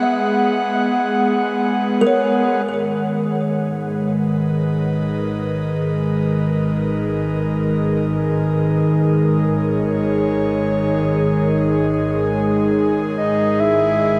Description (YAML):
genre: ambient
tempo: free time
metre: none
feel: none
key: G# minor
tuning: A4 = 440 Hz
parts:
  - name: airy breathy pad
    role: sustained chords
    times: 0.0-14.2 s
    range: G#3 to F#5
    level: -24 LUFS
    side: equal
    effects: chorus
  - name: kalimba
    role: arpeggios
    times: 0.0-3.1 s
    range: A#4 to E5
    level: -26 LUFS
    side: equal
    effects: delay
  - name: analog drone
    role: drone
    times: 0.0-14.2 s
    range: D#3 to B3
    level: -21 LUFS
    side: equal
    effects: chorus
  - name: muted studio double bass section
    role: bass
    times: 2.7-14.2 s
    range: G#1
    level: -32 LUFS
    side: equal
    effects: none
  - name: breathy flute-like synth lead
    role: melody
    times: 13.2-14.2 s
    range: D#5 to E5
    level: -19 LUFS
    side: equal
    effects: chorus
room: wet huge ambient reverb, RT60 8.8 s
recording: cassette tape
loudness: -19 LUFS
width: mono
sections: 0.0-2.7 A section; 2.7-14.2 B section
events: fade-in on analog synth pad 2.7-14.2; fade-in on double bass section 2.7-14.2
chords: 0.0 Eadd9/G#; 2.7 G#madd9; 13.2 E/G#